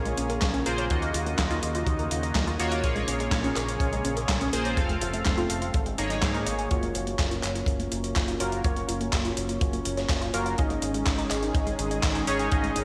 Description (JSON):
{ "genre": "italo disco", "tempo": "124 BPM", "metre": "4/4", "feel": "straight", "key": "unclear", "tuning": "A4 = 440 Hz", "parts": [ { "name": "lush unison pad", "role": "sustained chords", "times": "0.0-12.8 s", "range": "Db3 to A4", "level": "-36 LUFS", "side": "equal", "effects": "chorus" }, { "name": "chorused polysynth", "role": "stabs", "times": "0.0-12.8 s", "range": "Bb3 to F5", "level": "-33 LUFS", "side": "equal", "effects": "digital delay" }, { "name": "fingered electric bass with an envelope filter", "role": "bass", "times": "0.0-12.8 s", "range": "F1 to Ab2", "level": "-35 LUFS", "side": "equal", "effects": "none" }, { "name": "analog pluck", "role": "arpeggios", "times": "0.1-12.8 s", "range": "Ab3 to Ab5", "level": "-37 LUFS", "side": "equal", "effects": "chorus, digital delay" }, { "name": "dusty soul sampler-style drum kit", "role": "drums", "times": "0.1-12.8 s", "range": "handclaps, hi-hat, snare drum", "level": "-34 LUFS", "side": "equal", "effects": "overdrive, high-pass filter on hats, high-pass filter on snare, high-pass filter on room, gated reverb" }, { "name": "kick drum", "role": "drums", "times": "0.4-12.6 s", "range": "none", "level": "-31 LUFS", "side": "equal", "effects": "none" } ], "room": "moderate lush hall reverb, RT60 2.1 s", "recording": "bright 1980s-style digital production", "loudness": "-27 LUFS", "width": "mono", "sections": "0.0-6.7 A section; 6.7-12.8 B section", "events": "filter sweep on analog polysynth 6.7-12.8", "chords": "0.0 Bbm7; 0.9 Ebmadd9; 2.8 Bbm7; 4.8 F; 5.7 Absus2; 6.7 Gbmaj7; 10.6 Absus4" }